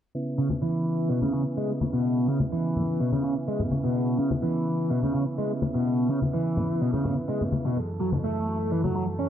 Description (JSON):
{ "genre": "breakbeat, breaks", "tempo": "126 BPM", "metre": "4/4", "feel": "straight", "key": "C# minor", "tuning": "A4 = 440 Hz", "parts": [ { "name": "mellow tonewheel organ", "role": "sustained chords", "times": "0.1-9.3 s", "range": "F#2 to A4", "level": "-31 LUFS", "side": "right 2 dB", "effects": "slow rotary speaker, low-pass filter" }, { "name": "overdriven electric guitar", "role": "riff", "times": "0.4-9.3 s", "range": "B2 to C#4", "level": "-26 LUFS", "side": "equal", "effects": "phaser, low-pass filter, tape echo" }, { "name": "congas", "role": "percussion", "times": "0.5-8.9 s", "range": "none", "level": "-30 LUFS", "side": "left 2 dB", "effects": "none" } ], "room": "moderate spring reverb, RT60 1.4 s, studio reverb", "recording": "echo-heavy mix, low-pass filter", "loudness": "-24 LUFS", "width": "side -10 dB against mid", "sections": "0.1-9.3 A section", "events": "filter sweep on overdriven electric guitar 0.1-9.3; filter sweep on tonewheel organ 0.1-9.3; filter sweep 0.1-9.3", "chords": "0.1 C#m7; 7.8 F#m7" }